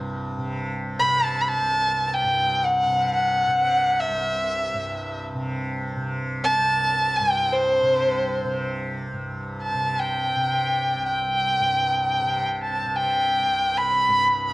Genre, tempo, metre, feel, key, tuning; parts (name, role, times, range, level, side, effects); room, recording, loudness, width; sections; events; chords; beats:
indian classical, Hindustani; free time; C raga yaman; A4 = 440 Hz
tanpura; drone; 0.0-14.5 s; C2 to C3; -29 LUFS; right 1 dB
rich violin; melody; 1.0-14.5 s; C5 to B5; -20 LUFS; equal
moderate concert hall reverb, RT60 1.8 s; worn, warbling old tape, cassette tape, warbly pitch drift; -20 LUFS; side -20 dB against mid
0.0-9.1 A section; 9.1-14.5 A section
free time